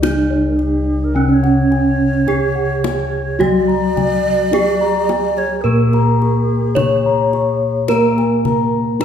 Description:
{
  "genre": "Javanese gamelan",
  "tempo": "53 BPM",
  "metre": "4/4",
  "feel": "straight",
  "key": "C# pelog barang",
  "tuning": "A4 = 438 Hz",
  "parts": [
    { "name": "gamelan-type bronze metallophone", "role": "melody", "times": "0.0-9.0 s", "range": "C#4 to C#5", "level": "-18 LUFS", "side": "right 2 dB", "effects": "none" },
    { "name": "gamelan-type bronze metallophone", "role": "accompaniment", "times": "0.0-9.0 s", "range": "C#3 to A#3+20c", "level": "-21 LUFS", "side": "left 2 dB", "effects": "none" },
    { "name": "gamelan-type bossed gongs", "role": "arpeggios", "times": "0.0-9.0 s", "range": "C#5 to C#6", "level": "-24 LUFS", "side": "left 7 dB", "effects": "none" },
    { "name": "gamelan-type bossed gongs", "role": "bass", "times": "0.0-9.0 s", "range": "C#2 to A#4+20c", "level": "-20 LUFS", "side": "left 1 dB", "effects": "none" },
    { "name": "kendang", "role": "percussion", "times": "0.0-9.0 s", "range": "none", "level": "-25 LUFS", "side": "left 4 dB", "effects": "none" },
    { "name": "breathy bright low xiao", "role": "second line", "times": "0.5-8.9 s", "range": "G#4-48c to D5+45c", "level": "-22 LUFS", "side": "right 1 dB", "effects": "none" }
  ],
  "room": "wet recital hall reverb, RT60 1.4 s",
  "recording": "recorded in a church or concert hall",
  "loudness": "-13 LUFS",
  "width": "side -8 dB against mid",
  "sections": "0.0-9.0 A section",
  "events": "none",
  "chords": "none"
}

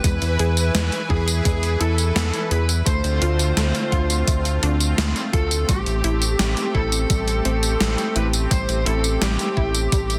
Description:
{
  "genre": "synthwave",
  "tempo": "85 BPM",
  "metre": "4/4",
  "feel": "straight",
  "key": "A minor",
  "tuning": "A4 = 440 Hz",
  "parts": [
    { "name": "smooth overdriven lead guitar", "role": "melody", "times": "0.0-10.2 s", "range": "G4 to C5", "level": "-29 LUFS", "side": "equal", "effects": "vintage 12-bit sampler grit, delay" },
    { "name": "brassy analog pad", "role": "sustained chords", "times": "0.0-10.2 s", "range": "D3 to G#5", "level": "-30 LUFS", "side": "equal", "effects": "chorus, tremolo, sidechain pumping" },
    { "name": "analog pluck", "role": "arpeggios", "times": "0.0-10.2 s", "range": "G3 to G#4", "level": "-32 LUFS", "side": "equal", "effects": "chorus, delay" },
    { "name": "round analog bass", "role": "bass", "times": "0.0-10.2 s", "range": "A1 to E2", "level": "-24 LUFS", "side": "equal", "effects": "none" },
    { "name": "electronic kick drum", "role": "drums", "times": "0.0-10.1 s", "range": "none", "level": "-24 LUFS", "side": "equal", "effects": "none" },
    { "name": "gated 80s digital drum machine", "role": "drums", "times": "0.0-10.2 s", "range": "hi-hat, snare drum, tambourine", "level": "-27 LUFS", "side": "equal", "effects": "gated reverb, gated reverb snare" }
  ],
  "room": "light reverb",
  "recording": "dense, heavily limited modern master",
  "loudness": "-20 LUFS",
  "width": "mono",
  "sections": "0.0-10.2 A section",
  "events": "none",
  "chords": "0.0 E; 2.9 Dm7; 5.7 Am7"
}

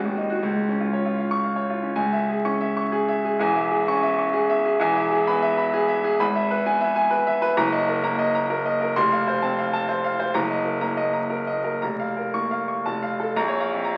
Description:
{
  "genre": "classical, virtuoso piano study",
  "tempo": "114-133 BPM",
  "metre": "3/4",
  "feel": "rubato",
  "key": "C# minor, Bb minor from 7.6 s",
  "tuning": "A4 = 440 Hz",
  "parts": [
    { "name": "clear grand piano", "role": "solo", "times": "0.0-14.0 s", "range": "E1 to Db6", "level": "-23 LUFS", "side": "equal", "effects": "none" }
  ],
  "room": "wet large studio reverb, RT60 1.4 s",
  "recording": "very old 78 rpm record, vinyl crackle",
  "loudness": "-23 LUFS",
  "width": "mono",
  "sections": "0.0-2.0 A section; 2.0-13.4 B section",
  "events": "none",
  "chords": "0.4 Db; 2.0 C#m; 3.4 C#m/E; 4.8 E; 6.2 E/G#; 7.6 Ebm/Gb; 9.0 F; 10.4 Ebm/Gb; 11.8 Bbm/F; 12.9 F; 13.4 Bbm"
}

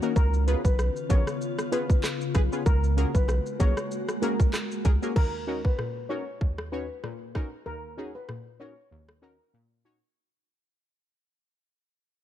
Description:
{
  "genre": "dancehall",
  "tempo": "96 BPM",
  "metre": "4/4",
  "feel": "swing 56% on 16ths",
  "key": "Eb minor",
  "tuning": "A4 = 440 Hz",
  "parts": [
    { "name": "synth brass stab", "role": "accompaniment", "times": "0.0-10.0 s", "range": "Eb2 to Db5", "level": "-33 LUFS", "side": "left 2 dB", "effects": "chorus, sidechain pumping" },
    { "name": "glassy FM pad", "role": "sustained chords", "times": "0.0-5.1 s", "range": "Db3 to Gb4", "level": "-34 LUFS", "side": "left 1 dB", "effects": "ensemble chorus, built-in reverb, sidechain pumping" },
    { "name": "island pop drum kit", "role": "drums", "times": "0.0-9.2 s", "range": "crash cymbal, handclaps, hi-hat, kick drum, rim click, shaker", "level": "-25 LUFS", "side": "equal", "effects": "overdrive" },
    { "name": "steel pan", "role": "melody", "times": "0.2-9.3 s", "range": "Bb4 to Db5", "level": "-35 LUFS", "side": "left 2 dB", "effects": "digital delay" },
    { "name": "saturated sub bass", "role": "bass", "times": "0.2-5.0 s", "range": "Bb1 to Db2", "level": "-25 LUFS", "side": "equal", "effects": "none" },
    { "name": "bongos", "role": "percussion", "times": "1.1-5.0 s", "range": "none", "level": "-41 LUFS", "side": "right 4 dB", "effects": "none" }
  ],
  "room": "little or no reverb",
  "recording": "dark, warm production",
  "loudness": "-24 LUFS",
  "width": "side -11 dB against mid",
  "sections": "0.0-5.2 A section; 5.2-10.2 B section",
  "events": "fade-out 5.2-10.2",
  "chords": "0.2 Db7; 2.7 Gbadd9; 5.2 Ebm7"
}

